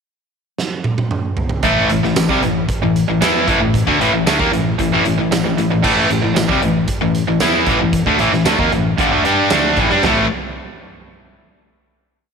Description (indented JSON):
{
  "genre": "classic rock",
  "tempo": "114 BPM",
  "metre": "4/4",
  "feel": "straight",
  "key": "unclear",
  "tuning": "A4 = 441 Hz",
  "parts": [
    { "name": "huge arena drum kit", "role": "drums", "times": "0.6-10.2 s", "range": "crash cymbal, hi-hat, kick drum, snare drum, tambourine, toms", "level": "-21 LUFS", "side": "right 3 dB", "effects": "none" },
    { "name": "cranked stack guitar", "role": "riff", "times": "1.6-10.3 s", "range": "G2 to G4", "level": "-17 LUFS", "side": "left 10 dB", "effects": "overdrive" },
    { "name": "distorted electric guitar", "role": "riff", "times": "1.6-10.3 s", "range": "G2 to G4", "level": "-17 LUFS", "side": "right 9 dB", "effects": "overdrive" },
    { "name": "sustaining fretless electric bass", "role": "bass", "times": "1.6-10.3 s", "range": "G1 to G2", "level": "-24 LUFS", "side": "equal", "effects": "ensemble chorus" }
  ],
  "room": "moderate echo chamber reverb, RT60 2.3 s",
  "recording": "1960s-style stereo with parts hard left and right",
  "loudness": "-13 LUFS",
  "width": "side -6 dB against mid",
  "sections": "0.0-1.6 pickup bar; 1.6-10.0 riff; 10.0-12.2 final chord",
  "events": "drum fill 0.6-1.6",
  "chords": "0.0 N.C.; 1.6 A5"
}